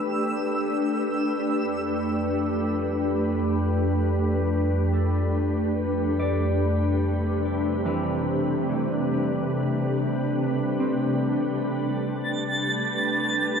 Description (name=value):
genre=ambient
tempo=free time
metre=none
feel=none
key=unclear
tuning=A4 = 441 Hz
part: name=glassy FM pad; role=sustained chords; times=0.0-13.6 s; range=F2 to B4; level=-23 LUFS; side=equal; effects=ensemble chorus, built-in reverb
part: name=mellow electric guitar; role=arpeggios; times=0.0-0.9, 4.9-11.9 s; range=E3 to D5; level=-33 LUFS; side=left 1 dB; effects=ping-pong delay
part: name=twinkling granular texture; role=texture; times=0.0-1.6, 12.2-13.6 s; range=E6 to A6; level=-29 LUFS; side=right 2 dB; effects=built-in reverb
part: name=organ-like drone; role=drone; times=4.8-13.6 s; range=G3 to D4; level=-35 LUFS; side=right 3 dB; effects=ensemble chorus, built-in reverb
room=wet cathedral reverb, RT60 5.7 s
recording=cassette tape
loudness=-22 LUFS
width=side -6 dB against mid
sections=0.0-1.6 A section; 1.6-13.6 A section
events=fade-in on clean electric guitar 1.6-13.6; fade-in on synth drone 1.6-13.6; filter sweep on ambient pad 1.6-13.6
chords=0.0 G; 1.6 Fadd9; 6.6 Cmaj7; 11.7 A9sus4